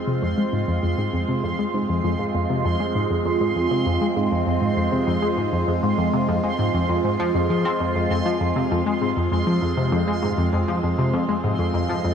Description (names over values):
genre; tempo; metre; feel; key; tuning
ambient, sequencer-driven space music; 99 BPM; 4/4; straight; F minor; A4 = 441 Hz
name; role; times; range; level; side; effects
phased analog pad; sustained chords; 0.0-12.1 s; Ab3 to F4; -24 LUFS; right 2 dB; phaser, chorus, shimmer reverb
tight sequenced synth; riff; 0.0-12.1 s; F2 to C4; -22 LUFS; left 2 dB; chorus, ping-pong delay
analog drone; bass; 1.7-12.1 s; F2; -37 LUFS; left 1 dB; none
bubbling stepped-filter texture; texture; 0.0-12.1 s; C6; -30 LUFS; right 2 dB; chorus, built-in reverb, shimmer reverb
room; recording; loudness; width
wet plate reverb, RT60 3.5 s; none; -20 LUFS; side -7 dB against mid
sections
0.0-12.1 A section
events
none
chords
0.0 Fm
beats
0.23 | 0.83 1.44 2.04 2.65 | 3.25 3.86 4.47 5.07 | 5.68 6.29 6.89 7.50 | 8.10 8.71 9.32 9.92 | 10.53 11.13 11.74